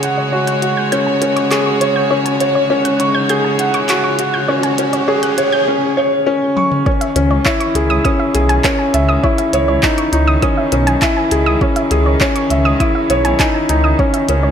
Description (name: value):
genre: piano and strings electronica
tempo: 101 BPM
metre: 4/4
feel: straight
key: C# minor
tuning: A4 = 441 Hz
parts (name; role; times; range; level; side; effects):
- rich chamber string section; sustained chords; 0.0-14.5 s; C#3 to C#5; -22 LUFS; equal; sidechain pumping
- felt-muted upright piano; riff; 0.0-14.5 s; C#4 to C#6; -15 LUFS; left 1 dB; digital delay
- minimal click drum kit; drums; 0.0-14.4 s; handclaps, hi-hat, toms; -20 LUFS; equal; none
- riser; sound effects; 0.0-5.7 s; none; -27 LUFS; right 2 dB; none
- soft round pluck; arpeggios; 0.2-14.5 s; C#5 to G6; -21 LUFS; right 1 dB; chorus, sidechain pumping, digital delay
- electronic kick drum; drums; 6.9-14.1 s; none; -18 LUFS; equal; overdrive
- dark detuned saw bass; bass; 7.2-14.5 s; B1 to C#2; -16 LUFS; equal; sidechain pumping
room: wet scoring stage reverb, RT60 1.6 s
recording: none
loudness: -12 LUFS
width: side -8 dB against mid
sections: 0.0-6.9 A section; 6.9-14.5 B section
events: build-up 0.0-6.9; riser 0.0-5.7; filter sweep on synth arpeggio sound 0.0-6.9; drum fill 6.6; drop 6.9-14.5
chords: 0.0 F#sus2/C#; 6.9 C#madd9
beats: 0.33 0.92 1.52 | 2.11 2.70 3.30 3.89 | 4.49 5.08 5.67 6.27 | 6.86 7.46 8.05 8.64 | 9.24 9.83 10.43 11.02 | 11.62 12.21 12.80 13.40 | 13.99